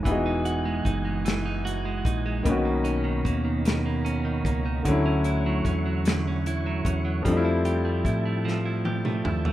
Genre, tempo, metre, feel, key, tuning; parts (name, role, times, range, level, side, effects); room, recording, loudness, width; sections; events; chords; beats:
slow six-eight R&B; 50 BPM (dotted quarters); 6/8; straight; A4 = 440 Hz
clean electric guitar; second line; 0.0-9.5 s; B2 to G4; -29 LUFS; right 4 dB
clear concert grand piano; accompaniment; 0.0-9.5 s; B2 to F#4; -28 LUFS; left 2 dB
tonewheel organ; sustained chords; 0.0-9.5 s; E3 to C#6; -37 LUFS; left 1 dB; chorus vibrato, slow rotary speaker
deep dub fingered electric bass; bass; 0.1-9.5 s; E1 to A2; -28 LUFS; equal
warm soul drum kit; drums; 0.1-9.5 s; hi-hat, kick drum, snare drum, toms; -28 LUFS; equal
light reverb, small room ambience; rough home demo mix; -23 LUFS; side -14 dB against mid
0.1-9.5 A section
drum fill 8.5-9.5
0.1 Emaj9; 2.5 Bmaj9; 4.9 Dmaj9; 7.3 Fmaj9
| 0.05 1.25 | 2.45 3.65 | 4.85 6.05 | 7.25 8.45